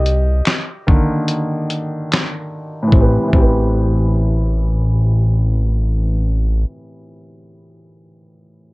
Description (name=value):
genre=lo-fi hip hop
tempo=73 BPM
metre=4/4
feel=swing 61% on 16ths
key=unclear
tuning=A4 = 438 Hz
part: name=clear upright piano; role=accompaniment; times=0.0-8.7 s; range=A2 to Eb5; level=-20 LUFS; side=equal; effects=low-pass filter
part: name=fat analog bass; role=bass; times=0.0-6.7 s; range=A1 to C2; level=-15 LUFS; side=equal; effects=none
part: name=lo-fi sampler-style drum kit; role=drums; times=0.1-3.6 s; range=handclaps, hi-hat, kick drum, snare drum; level=-14 LUFS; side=equal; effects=none
room=little or no reverb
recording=cassette tape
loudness=-14 LUFS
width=side -23 dB against mid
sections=0.0-2.9 A section; 2.9-6.2 B section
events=upright piano solo 0.0-2.9; filter sweep on upright piano 0.0-2.9; break 1.3-2.9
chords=0.0 Cm9; 2.9 Am9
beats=0.46 1.28 2.10 | 2.92 3.74 4.57 5.39